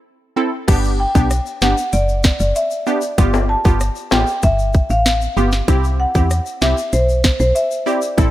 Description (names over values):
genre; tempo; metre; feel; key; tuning
dancehall; 96 BPM; 4/4; straight; G major; A4 = 440 Hz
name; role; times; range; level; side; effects
wavetable chord stab; accompaniment; 0.4-8.3 s; B3 to A4; -21 LUFS; right 1 dB; none
woody FM bass; bass; 0.7-8.3 s; F#1 to E2; -18 LUFS; equal; none
island pop drum kit; drums; 0.7-8.3 s; crash cymbal, hi-hat, kick drum, rim click, snare drum; -17 LUFS; equal; none
egg shaker and timbales; percussion; 0.7-8.3 s; none; -28 LUFS; left 9 dB; none
marimba with medium hard mallets; melody; 1.0-8.0 s; C5 to A5; -20 LUFS; equal; digital delay
room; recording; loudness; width
digital ambience; none; -14 LUFS; side -14 dB against mid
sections
0.7-8.3 A section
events
break 0.0-0.7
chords
0.0 Am; 0.7 G; 3.2 G7; 5.7 C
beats
0.06 | 0.68 1.31 1.93 2.56 | 3.18 3.81 4.43 5.06 | 5.68 6.31 6.93 7.56 | 8.18